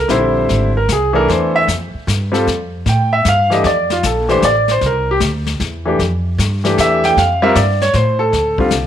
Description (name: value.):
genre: jazz piano trio.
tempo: 153 BPM.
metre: 3/4.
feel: swing 66% on 8ths.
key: F major.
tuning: A4 = 442 Hz.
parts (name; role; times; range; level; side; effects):
warm concert grand piano; melody; 0.0-8.7 s; D3 to G5; -14 LUFS; equal; slapback echo.
upright bass; bass; 0.0-8.9 s; Ab1 to A2; -18 LUFS; right 1 dB; none.
jazz brush drum kit; drums; 0.1-8.9 s; brushed snare drum, hi-hat, kick drum, snare drum; -22 LUFS; left 5 dB; none.
room: small room ambience.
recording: 1960s-style stereo.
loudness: -12 LUFS.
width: side -10 dB against mid.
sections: 0.0-8.3 A section.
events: grand piano solo 0.0-8.9.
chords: 0.1 Bb9; 1.3 Am7; 2.5 F; 3.6 Bbmaj7; 4.8 C; 6.0 Fmaj7; 8.3 Dm7.